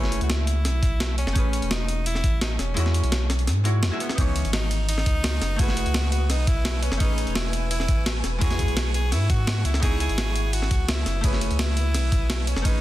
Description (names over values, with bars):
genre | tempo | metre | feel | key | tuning
liquid drum and bass | 170 BPM | 4/4 | straight | unclear | A4 = 442 Hz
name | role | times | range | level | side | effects
bright tenor saxophone | melody | 0.0-12.8 s | B3 to G#4 | -32 LUFS | equal | tape echo
archtop guitar, miked and amplified | accompaniment | 0.0-12.8 s | E3 to E5 | -32 LUFS | left 1 dB | ping-pong delay
warm sub bass | bass | 0.0-12.8 s | E1 to G#2 | -24 LUFS | equal | none
breakbeat sampler-style drum kit | drums | 0.0-12.7 s | hi-hat, ride cymbal, snare drum | -28 LUFS | equal | none
electronic kick drum | drums | 0.8-12.7 s | none | -23 LUFS | equal | none
shimmering ambient pad | sustained chords | 5.2-12.8 s | G#4 to E6 | -37 LUFS | left 1 dB | chorus, built-in reverb
room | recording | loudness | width
digital ambience | dense, heavily limited modern master | -21 LUFS | side -15 dB against mid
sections
0.0-12.8 A section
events
kick drops out 2.8-4.2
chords
0.0 F#m11; 1.4 Amaj9; 2.8 E69; 4.2 C#m9; 5.4 F#m11; 7.0 Amaj9; 8.4 E69; 9.8 C#m9; 11.1 F#m11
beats
0.30 0.65 1.00 | 1.36 1.71 2.06 2.42 | 2.77 3.12 3.47 3.83 | 4.18 4.53 4.88 5.24 | 5.59 5.94 6.30 6.65 | 7.00 7.36 7.71 8.06 | 8.41 8.77 9.12 9.47 | 9.83 10.18 10.53 10.88 | 11.24 11.59 11.94 12.30 | 12.65